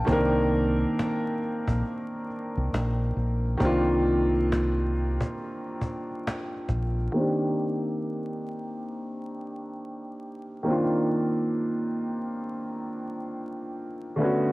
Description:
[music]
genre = lo-fi hip hop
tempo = 68 BPM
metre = 4/4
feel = swing 64% on 16ths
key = C minor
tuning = A4 = 440 Hz
[part]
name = felt-muted upright piano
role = accompaniment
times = 0.0-14.5 s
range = D3 to A5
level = -26 LUFS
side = equal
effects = low-pass filter, cassette tape
[part]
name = deep dub fingered electric bass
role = bass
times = 0.1-7.1 s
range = Bb1 to C2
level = -26 LUFS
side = equal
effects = none
[part]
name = cajon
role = drums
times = 0.1-7.1 s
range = none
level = -33 LUFS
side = equal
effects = cassette tape
[sound]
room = moderate lush hall reverb, RT60 1.9 s, studio reverb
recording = home recording on cassette, vinyl crackle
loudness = -25 LUFS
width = side -20 dB against mid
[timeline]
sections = 0.0-7.1 A section; 7.1-14.5 B section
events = filter sweep on felt piano 7.1-14.5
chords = 0.0 Cm9

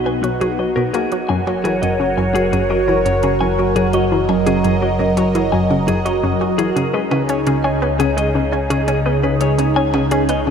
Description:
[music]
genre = ambient, sequencer-driven space music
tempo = 85 BPM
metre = 4/4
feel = straight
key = unclear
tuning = A4 = 440 Hz
[part]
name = phased analog pad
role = sustained chords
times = 0.0-10.5 s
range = C#3 to D#5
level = -18 LUFS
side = right 1 dB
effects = phaser, chorus
[part]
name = fat analog bass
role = bass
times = 0.0-10.5 s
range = F#1 to C#2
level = -24 LUFS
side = equal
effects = none
[part]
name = analog pluck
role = riff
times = 0.1-10.5 s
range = F#2 to C#4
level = -20 LUFS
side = left 1 dB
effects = chorus, cassette tape, ping-pong delay
[part]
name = clean electric guitar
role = arpeggios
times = 0.2-10.4 s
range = F#4 to G#5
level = -24 LUFS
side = moving between left 6 dB and right 1 dB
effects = auto-pan, ping-pong delay
[part]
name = electronic hi-hat and percussion blips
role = percussion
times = 0.2-10.4 s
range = none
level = -33 LUFS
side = right 2 dB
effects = ping-pong delay
[sound]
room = wet lush hall reverb, RT60 2.7 s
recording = dreamy mix soaked in reverb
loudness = -14 LUFS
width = side -7 dB against mid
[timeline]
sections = 0.0-10.5 A section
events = fade-in on drum 0.0-10.5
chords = 0.0 B; 1.1 F#; 6.8 C#sus2

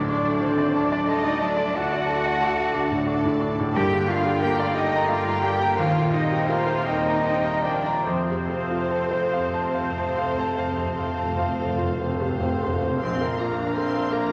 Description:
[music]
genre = classical, romantic movement for piano and orchestra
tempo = 47-63 BPM (dotted quarters)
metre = 12/8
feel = rubato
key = unclear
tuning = A4 = 439 Hz
[part]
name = clear baby grand piano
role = melody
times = 0.0-14.3 s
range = Bb1 to Bb5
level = -27 LUFS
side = equal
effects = none
[part]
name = rich studio violin section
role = melody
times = 0.0-14.3 s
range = C5 to C6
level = -41 LUFS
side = equal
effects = none
[part]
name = mellow hollow silver concert flute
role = second line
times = 0.0-14.3 s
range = Bb4 to G5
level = -34 LUFS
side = equal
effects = none
[part]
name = rich studio violin section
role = second line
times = 0.0-14.3 s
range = F4 to A5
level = -39 LUFS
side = equal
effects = none
[part]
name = rich studio viola section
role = accompaniment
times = 0.0-14.3 s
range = F3 to D5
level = -37 LUFS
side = equal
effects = none
[part]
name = clear trombone section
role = sustained chords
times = 0.0-12.7 s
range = C3 to Bb3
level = -36 LUFS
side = equal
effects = none
[part]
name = dark French horn section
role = sustained chords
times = 0.0-14.3 s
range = Eb3 to D4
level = -39 LUFS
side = equal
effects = none
[part]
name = dark trumpet section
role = stabs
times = 0.0-11.8 s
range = C5 to G5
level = -36 LUFS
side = equal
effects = none
[part]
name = rich studio cello section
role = bass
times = 0.0-14.3 s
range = Bb3 to G4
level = -32 LUFS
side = equal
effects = none
[part]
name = warm studio double bass section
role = bass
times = 0.0-14.3 s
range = Bb1 to G2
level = -38 LUFS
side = equal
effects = none
[part]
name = mellow cor anglais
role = second line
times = 0.1-14.3 s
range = Bb3 to D5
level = -40 LUFS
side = equal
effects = none
[part]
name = warm clarinet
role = second line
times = 0.1-14.3 s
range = A4 to F5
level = -42 LUFS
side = equal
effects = none
[part]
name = timpani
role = percussion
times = 8.1-13.0 s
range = F2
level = -33 LUFS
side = equal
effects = none
[sound]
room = wet concert hall reverb, RT60 2.1 s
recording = none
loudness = -24 LUFS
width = mono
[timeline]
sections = 0.0-13.0 A section; 13.0-14.3 B section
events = timpani fill 8.0-13.0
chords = 0.0 D; 3.7 Gm; 5.8 Cm7/Eb; 8.0 F; 13.0 Bb

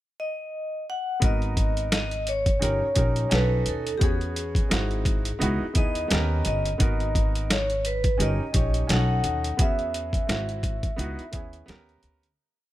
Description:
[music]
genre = hip hop, jazz-hop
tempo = 86 BPM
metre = 4/4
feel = swing 57% on 16ths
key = G# minor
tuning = A4 = 440 Hz
[part]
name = vibraphone with medium hard mallets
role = melody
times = 0.2-11.7 s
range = G4 to F#5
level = -29 LUFS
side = left 1 dB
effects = none
[part]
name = warm upright piano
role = accompaniment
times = 1.2-12.3 s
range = B3 to C#5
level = -32 LUFS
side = right 3 dB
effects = none
[part]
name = upright bass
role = bass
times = 1.2-12.3 s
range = G1 to E2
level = -27 LUFS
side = equal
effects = none
[part]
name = boom bap sampler-style drum kit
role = drums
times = 1.2-12.4 s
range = hi-hat, kick drum, snare drum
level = -25 LUFS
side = equal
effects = overdrive
[sound]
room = small room ambience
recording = none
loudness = -22 LUFS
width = side -14 dB against mid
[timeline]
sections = 0.0-1.2 pickup bar; 1.2-12.4 A section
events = fade-out 9.6-12.4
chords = 0.0 N.C.; 1.2 G#m7; 2.6 D#7/G; 3.3 B7; 4.0 E69; 4.7 G#7b13; 5.4 C#m11; 6.1 D#7b13; 6.8 G#m7; 8.2 D#7/G; 8.9 B7; 9.6 E69; 10.3 G#7b13; 11.0 C#m11; 11.7 D#7b13

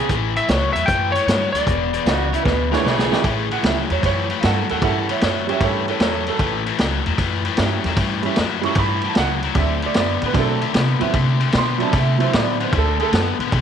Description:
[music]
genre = electric blues shuffle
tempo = 152 BPM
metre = 4/4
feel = swing 67% on 8ths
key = A mixolydian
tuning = A4 = 440 Hz
[part]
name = overdriven harmonica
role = second line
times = 0.0-3.2 s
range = C#4 to C#5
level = -26 LUFS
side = right 9 dB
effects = tape echo
[part]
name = biting overdriven guitar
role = riff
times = 0.0-13.6 s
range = E2 to B3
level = -23 LUFS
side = left 12 dB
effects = none
[part]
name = upright bass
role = bass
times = 0.1-13.6 s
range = E1 to C3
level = -23 LUFS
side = equal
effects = none
[part]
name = vintage drum kit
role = drums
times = 0.1-13.6 s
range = hi-hat, kick drum, ride cymbal, snare drum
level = -22 LUFS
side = equal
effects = none
[part]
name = lightly driven lead guitar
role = melody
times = 0.4-2.3 s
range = C#5 to G5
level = -21 LUFS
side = left 1 dB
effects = none
[part]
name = warm upright piano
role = accompaniment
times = 2.7-13.6 s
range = E3 to C#6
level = -23 LUFS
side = right 10 dB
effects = none
[sound]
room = moderate echo chamber reverb, RT60 1.5 s, small room ambience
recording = 1960s-style stereo with parts hard left and right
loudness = -17 LUFS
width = side -8 dB against mid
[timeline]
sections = 0.0-3.2 A section; 3.2-13.6 B section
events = drum fill 2.4-3.2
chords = 0.1 A7; 1.7 E7(no3); 3.2 A7; 9.6 D7

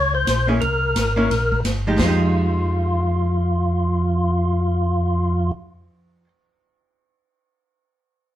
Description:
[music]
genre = soul jazz organ trio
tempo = 174 BPM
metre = 4/4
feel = swing 62% on 8ths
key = F minor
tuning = A4 = 441 Hz
[part]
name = percussive tonewheel organ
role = melody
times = 0.0-5.5 s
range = F4 to Db5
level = -23 LUFS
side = left 2 dB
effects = slow rotary speaker, overdrive, chorus vibrato
[part]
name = mellow tonewheel organ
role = bass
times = 0.0-5.5 s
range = G1 to F2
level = -20 LUFS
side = equal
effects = chorus vibrato, slow rotary speaker
[part]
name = swinging big-band drum kit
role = drums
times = 0.3-2.1 s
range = crash cymbal, hi-hat, kick drum, ride cymbal, snare drum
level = -25 LUFS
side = equal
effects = none
[part]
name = archtop guitar, miked and amplified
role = accompaniment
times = 0.5-6.3 s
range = F3 to G4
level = -23 LUFS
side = equal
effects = none
[sound]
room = light reverb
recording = band playing live in one room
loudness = -18 LUFS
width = side -12 dB against mid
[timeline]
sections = 0.0-2.0 A section; 2.0-4.8 B section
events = none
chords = 0.0 Bbmadd9; 0.6 C7(no3); 2.0 Fm9

